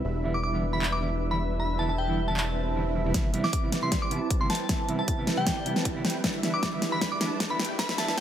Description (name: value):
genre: future bass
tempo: 155 BPM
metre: 4/4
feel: half-time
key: C major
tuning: A4 = 439 Hz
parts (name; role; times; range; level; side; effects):
- big bright polysynth; riff; 0.0-8.2 s; G3 to A5; -32 LUFS; right 2 dB; vintage 12-bit sampler grit, sidechain pumping
- fat analog bass; bass; 0.0-3.1 s; E1; -30 LUFS; equal; sidechain pumping
- mellow electric guitar; accompaniment; 0.2-8.1 s; C3 to E4; -34 LUFS; right 2 dB; vintage 12-bit sampler grit, sidechain pumping, dub echo
- glassy synth bell; melody; 0.3-8.2 s; G5 to D6; -32 LUFS; left 1 dB; chorus, tremolo, sidechain pumping, dub echo
- big-room dance drum kit; drums; 0.8-8.2 s; handclaps, hi-hat, snare drum; -29 LUFS; left 1 dB; none
- swell and riser; sound effects; 2.5-8.2 s; none; -40 LUFS; right 3 dB; none
- electronic kick drum; drums; 3.1-8.2 s; none; -30 LUFS; equal; none
room: light reverb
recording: high-pass filter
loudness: -25 LUFS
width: side -10 dB against mid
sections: 0.0-3.1 A section; 3.1-8.2 B section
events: filter sweep on analog polysynth 0.0-3.1, 3.1-8.2; swell 2.5-3.1; build-up 3.1-8.2; drum fill 3.1-8.2; filter sweep 3.1-8.2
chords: 0.0 Em7; 3.1 Cmaj7; 6.2 Em7